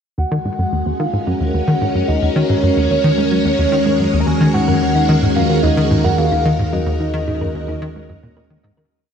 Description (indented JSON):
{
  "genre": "ambient, sequencer-driven space music",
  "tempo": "110 BPM",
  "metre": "4/4",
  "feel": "straight",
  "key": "Eb minor",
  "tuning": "A4 = 441 Hz",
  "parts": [
    { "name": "soft octave-layered synth lead", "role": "melody", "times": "0.2-8.3 s", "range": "Db5 to Bb5", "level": "-21 LUFS", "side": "equal", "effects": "chorus, phaser, shimmer reverb, ping-pong delay" },
    { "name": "phased string machine", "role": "sustained chords", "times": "0.2-8.9 s", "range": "Ab3 to Bb4", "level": "-19 LUFS", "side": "equal", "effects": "ensemble chorus, phaser, shimmer reverb" },
    { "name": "plucky analog bass", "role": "riff", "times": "0.2-8.8 s", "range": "Eb2 to Eb3", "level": "-18 LUFS", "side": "equal", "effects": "wide subtle chorus, ping-pong delay" },
    { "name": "analog drone", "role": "bass", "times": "2.4-8.9 s", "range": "Eb2", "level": "-22 LUFS", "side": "equal", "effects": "chorus" },
    { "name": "thumb-piano-like synth pluck", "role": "arpeggios", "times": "4.5-8.8 s", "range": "Bb3 to Eb5", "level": "-26 LUFS", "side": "moving between left 1 dB and right 5 dB", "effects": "chorus, auto-pan, shimmer reverb, ping-pong delay" }
  ],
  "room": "wet lush hall reverb, RT60 2.9 s",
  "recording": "none",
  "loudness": "-14 LUFS",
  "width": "side -7 dB against mid",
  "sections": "0.2-8.9 A section",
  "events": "fade-in on synth drone 0.2-8.9; fade-out 6.0-8.9",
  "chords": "0.2 Ebm7"
}